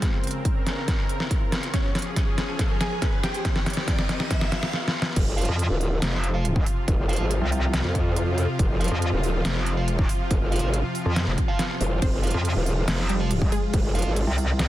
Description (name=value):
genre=heavy wobble dubstep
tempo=140 BPM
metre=4/4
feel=half-time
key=F minor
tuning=A4 = 440 Hz
part: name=wide unison pluck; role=melody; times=0.0-4.7, 12.0-14.7 s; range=G3 to Ab5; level=-32 LUFS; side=right 1 dB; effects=digital delay
part: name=supersaw pad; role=sustained chords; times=0.0-14.7 s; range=C3 to Bb4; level=-31 LUFS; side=equal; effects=sidechain pumping
part: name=dubstep drum kit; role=drums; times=0.0-14.7 s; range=crash cymbal, hi-hat, snare drum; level=-29 LUFS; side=equal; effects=none
part: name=electronic kick drum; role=drums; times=0.0-13.8 s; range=none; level=-24 LUFS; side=equal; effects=none
part: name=riser and swell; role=sound effects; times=0.4-5.2 s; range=none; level=-36 LUFS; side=right 1 dB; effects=none
part: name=growl bass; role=bass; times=5.2-14.3 s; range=Eb1 to F2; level=-24 LUFS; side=equal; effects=chorus, overdrive
part: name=sludgy distorted guitar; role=stabs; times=5.4-14.1 s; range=F4 to F5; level=-35 LUFS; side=right 4 dB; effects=overdrive, digital delay
part: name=metallic wobble bass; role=bass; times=5.5-14.7 s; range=F1 to F2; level=-23 LUFS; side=equal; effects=chorus, overdrive
room=digital ambience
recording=dense, heavily limited modern master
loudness=-22 LUFS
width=side -14 dB against mid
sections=0.0-5.2 A section; 5.2-14.7 B section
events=build-up 0.0-5.2; drum fill 0.0-4.7, 4.7-5.2; riser 0.4-4.7; swell 4.3-5.2; drop 5.2-14.7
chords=0.0 Bbmadd9; 1.7 Db; 3.5 Cm; 5.2 Fm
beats=| 0.02 0.45 0.88 1.31 | 1.74 2.16 2.59 3.02 | 3.45 3.88 4.31 4.74 | 5.16 5.59 6.02 6.45 | 6.88 7.31 7.74 8.16 | 8.59 9.02 9.45 9.88 | 10.31 10.74 11.16 11.59 | 12.02 12.45 12.88 13.31 | 13.74 14.16 14.59